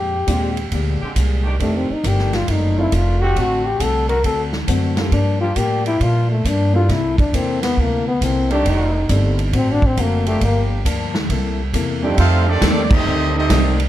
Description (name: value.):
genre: jazz, big band swing.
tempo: 136 BPM.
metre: 4/4.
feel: swing 66% on 8ths.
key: F mixolydian.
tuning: A4 = 440 Hz.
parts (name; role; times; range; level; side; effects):
mellow trombone; melody; 0.0-10.6 s; A3 to Bb4; -20 LUFS; left 2 dB; none.
picked acoustic archtop guitar; accompaniment; 0.0-13.8 s; F2 to A4; -26 LUFS; left 5 dB; none.
upright bass; bass; 0.0-13.9 s; F1 to Bb2; -19 LUFS; right 1 dB; none.
warm baby grand piano; accompaniment; 0.3-12.2 s; F2 to A4; -25 LUFS; right 2 dB; none.
swinging big-band drum kit; drums; 0.3-13.9 s; crash cymbal, hi-hat, kick drum, ride cymbal, snare drum; -23 LUFS; right 1 dB; none.
brilliant trombone section; sustained chords; 1.0-12.6 s; F2 to D5; -28 LUFS; right 3 dB; none.
bright trumpet section; melody; 12.2-13.8 s; C4 to F5; -21 LUFS; right 1 dB; none.
bright trombone section; second line; 12.2-13.8 s; Eb3 to F4; -22 LUFS; right 5 dB; none.
room: light reverb.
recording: dark, warm production.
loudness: -15 LUFS.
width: side -13 dB against mid.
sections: 0.0-12.2 A section; 12.2-13.9 B section.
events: trombone solo 0.0-12.2; band accent 12.8.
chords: 0.0 Bb13; 1.6 F13; 3.4 D7; 5.1 Gm7; 6.9 C13; 8.7 F13; 9.5 D7; 10.4 Gm7; 11.3 C13; 12.2 F13.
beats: 0.28 0.72 1.16 | 1.60 2.04 2.48 2.92 | 3.37 3.81 4.25 4.69 | 5.13 5.57 6.01 6.45 | 6.89 7.33 7.77 8.21 | 8.66 9.10 9.54 9.98 | 10.42 10.86 11.30 11.74 | 12.18 12.62 13.06 13.50.